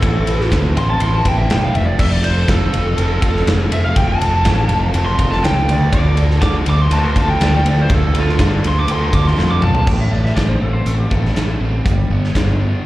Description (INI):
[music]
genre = classic rock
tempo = 122 BPM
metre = 4/4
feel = straight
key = A minor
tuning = A4 = 442 Hz
[part]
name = lead guitar through a small cranked amp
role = melody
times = 0.0-9.9 s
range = F4 to D6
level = -21 LUFS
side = equal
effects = overdrive, plate reverb, slapback echo
[part]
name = picked steel-string acoustic guitar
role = accompaniment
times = 0.0-9.9 s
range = A2 to B4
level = -29 LUFS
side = equal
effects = none
[part]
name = crunchy overdriven guitar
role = riff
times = 0.0-12.9 s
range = A2 to B4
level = -23 LUFS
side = right 1 dB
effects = spring reverb, slapback echo
[part]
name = growling fingered electric bass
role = bass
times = 0.0-12.7 s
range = E1 to G2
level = -16 LUFS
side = equal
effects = overdrive
[part]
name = big rock drum kit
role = drums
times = 0.0-12.5 s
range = crash cymbal, hi-hat, kick drum, ride cymbal, snare drum, toms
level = -19 LUFS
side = equal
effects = none
[part]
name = clean lap steel guitar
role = second line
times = 9.9-12.5 s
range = G4 to G5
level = -28 LUFS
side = left 1 dB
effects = plate reverb, slapback echo
[sound]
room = light reverb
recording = live gig heard through the venue's PA, recital hall reverb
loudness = -13 LUFS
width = side -16 dB against mid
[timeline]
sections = 0.0-9.9 A section; 9.9-12.9 B section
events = lead electric guitar solo 0.0-9.9; drum fill 9.4-9.9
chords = 0.0 Amadd9; 1.7 F; 5.7 Dm; 9.9 Am; 11.8 G